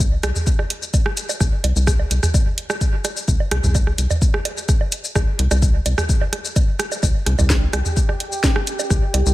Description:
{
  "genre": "minimal techno",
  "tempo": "128 BPM",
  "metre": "4/4",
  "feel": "straight",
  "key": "unclear",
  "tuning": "A4 = 443 Hz",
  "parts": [
    { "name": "rubbery square bass", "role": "bass", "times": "0.0-9.3 s", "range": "C2", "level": "-18 LUFS", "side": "equal", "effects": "tube saturation, sidechain pumping" },
    { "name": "electronic kick drum", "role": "drums", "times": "0.0-9.0 s", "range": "none", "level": "-18 LUFS", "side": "equal", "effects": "small room ambience" },
    { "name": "garage drum kit", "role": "drums", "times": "0.0-9.3 s", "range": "hi-hat, shaker, snare drum", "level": "-24 LUFS", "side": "left 2 dB", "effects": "overdrive, small room ambience" },
    { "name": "booming analog drum machine", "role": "percussion", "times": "0.2-9.2 s", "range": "rim click, toms, woodblock", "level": "-24 LUFS", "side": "right 2 dB", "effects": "small room ambience, diffuse ambient delay" },
    { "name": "bubbling stepped-filter texture", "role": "texture", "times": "7.5-9.3 s", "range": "G4 to G5", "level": "-28 LUFS", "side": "right 1 dB", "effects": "chorus, built-in reverb, sidechain pumping" }
  ],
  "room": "digital ambience",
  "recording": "none",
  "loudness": "-17 LUFS",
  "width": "side -17 dB against mid",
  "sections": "0.0-9.3 A section",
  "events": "none",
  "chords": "0.0 C5",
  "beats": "0.00 0.47 0.94 | 1.41 1.87 2.34 2.81 | 3.28 3.75 4.22 4.69 | 5.16 5.62 6.09 6.56 | 7.03 7.50 7.97 8.44 | 8.90"
}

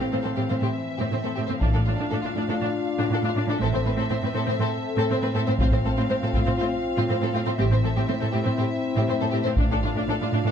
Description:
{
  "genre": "cinematic, epic orchestral film score",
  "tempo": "121 BPM",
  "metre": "4/4",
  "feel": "straight",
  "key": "unclear",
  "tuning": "A4 = 440 Hz",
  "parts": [
    { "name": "warm symphonic violin section", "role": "melody", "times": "0.0-10.5 s", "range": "E5 to F5", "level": "-36 LUFS", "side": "left 1 dB", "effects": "none" },
    { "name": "warm symphonic violin section", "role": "second line", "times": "0.0-10.5 s", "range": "D4 to C5", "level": "-31 LUFS", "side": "left 3 dB", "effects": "none" },
    { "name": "clear symphonic viola section", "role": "accompaniment", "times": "0.0-10.5 s", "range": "C4 to D4", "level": "-31 LUFS", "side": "right 1 dB", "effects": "none" },
    { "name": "warm French horn section", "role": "sustained chords", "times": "0.0-10.5 s", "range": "E3 to A4", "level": "-29 LUFS", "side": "left 4 dB", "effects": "none" },
    { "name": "warm symphonic cello section", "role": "bass", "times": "0.0-10.5 s", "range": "A2", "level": "-26 LUFS", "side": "right 2 dB", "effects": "none" },
    { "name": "rich studio double bass section", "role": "bass", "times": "1.6-9.7 s", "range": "A1", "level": "-26 LUFS", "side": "right 1 dB", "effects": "none" },
    { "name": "solo taiko drums", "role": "drums", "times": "1.6-2.6, 5.6-6.6, 9.6-10.5 s", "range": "none", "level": "-26 LUFS", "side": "equal", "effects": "none" }
  ],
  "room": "moderate recital hall reverb, RT60 1.8 s",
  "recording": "dark, warm production",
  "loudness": "-22 LUFS",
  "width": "side -8 dB against mid",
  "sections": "0.0-10.5 A section",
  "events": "build-up 0.0-10.5",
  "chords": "0.0 C6/A; 1.6 Dm/A; 3.6 Am; 5.6 F/A; 7.6 C6/A; 9.6 Dm/A",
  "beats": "0.14 0.63 1.13 | 1.63 2.12 2.62 3.12 | 3.61 4.11 4.61 5.11 | 5.60 6.10 6.60 7.09 | 7.59 8.09 8.59 9.08 | 9.58 10.08"
}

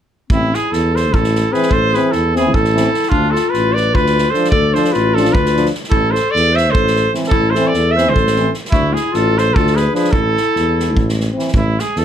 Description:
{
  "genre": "balkan folk, Balkan brass band",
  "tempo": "299 BPM (eighths)",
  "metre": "7/8",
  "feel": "straight",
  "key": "A harmonic minor",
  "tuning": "A4 = 440 Hz",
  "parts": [
    { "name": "clear trumpet", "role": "melody", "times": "0.3-12.0 s", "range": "E4 to E5", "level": "-17 LUFS", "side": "right 3 dB", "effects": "none" },
    { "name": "warm clarinet", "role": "second line", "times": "0.3-11.2 s", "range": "A3 to C5", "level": "-20 LUFS", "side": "left 6 dB", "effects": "none" },
    { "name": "mellow tuba", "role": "bass", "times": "0.3-12.0 s", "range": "A1 to E2", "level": "-18 LUFS", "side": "equal", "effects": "none" },
    { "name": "unplugged drum kit", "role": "percussion", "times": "0.3-12.0 s", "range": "kick drum, snare drum", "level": "-20 LUFS", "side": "equal", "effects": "none" },
    { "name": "clear euphonium", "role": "accompaniment", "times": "1.5-11.5 s", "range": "E3 to F3", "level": "-23 LUFS", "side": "right 4 dB", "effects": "none" },
    { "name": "mellow French horn", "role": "accompaniment", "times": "1.5-11.5 s", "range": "C4 to D4", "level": "-21 LUFS", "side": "left 3 dB", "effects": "none" }
  ],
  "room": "light reverb",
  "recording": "none",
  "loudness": "-12 LUFS",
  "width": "side -9 dB against mid",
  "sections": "0.3-11.5 A section",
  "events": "none",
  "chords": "0.3 Am; 3.1 Dm; 5.9 Am; 8.7 Dm; 10.1 A5",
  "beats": "| 0.30 0.50 0.70 0.90 1.10 1.31 1.51 | 1.71 1.91 2.11 2.31 2.51 2.71 2.91 | 3.11 3.31 3.52 3.71 3.92 4.12 4.32 | 4.52 4.72 4.92 5.12 5.32 5.52 5.72 | 5.92 6.12 6.32 6.52 6.72 6.92 7.12 | 7.33 7.53 7.73 7.93 8.13 8.33 8.53 | 8.73 8.93 9.13 9.33 9.53 9.73 9.93 | 10.13 10.33 10.53 10.73 10.93 11.13 11.33 | 11.53 11.73 11.93"
}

